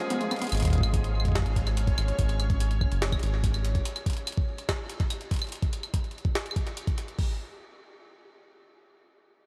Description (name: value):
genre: IDM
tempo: 144 BPM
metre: 4/4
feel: straight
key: G# dorian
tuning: A4 = 444 Hz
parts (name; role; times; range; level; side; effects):
- warm analog pad; sustained chords; 0.0-0.5 s; E#3 to G#4; -42 LUFS; equal; chorus, vintage 12-bit sampler grit, sidechain pumping
- jungle sampler-style drum kit; drums; 0.0-7.2 s; claves, hi-hat, snare drum; -37 LUFS; equal; delay
- backwards swelling texture; texture; 0.0-2.2 s; G#3 to C#5; -42 LUFS; equal; built-in reverb, lush chorus
- deep acid bass; arpeggios; 0.1-0.5 s; G#3 to B3; -41 LUFS; equal; none
- round analog bass; bass; 0.5-3.8 s; F#1 to G#1; -29 LUFS; equal; none
- jungle sampler-style drum kit; drums; 0.6-7.3 s; hi-hat, kick drum; -30 LUFS; equal; none
room: moderate huge ambient reverb, RT60 7.9 s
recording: dreamy mix soaked in reverb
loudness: -28 LUFS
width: mono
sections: 0.5-7.2 A section; 7.2-9.5 B section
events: break 0.0-0.5; drum fill 0.3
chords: 0.0 C#7; 0.5 G#sus4; 3.9 N.C.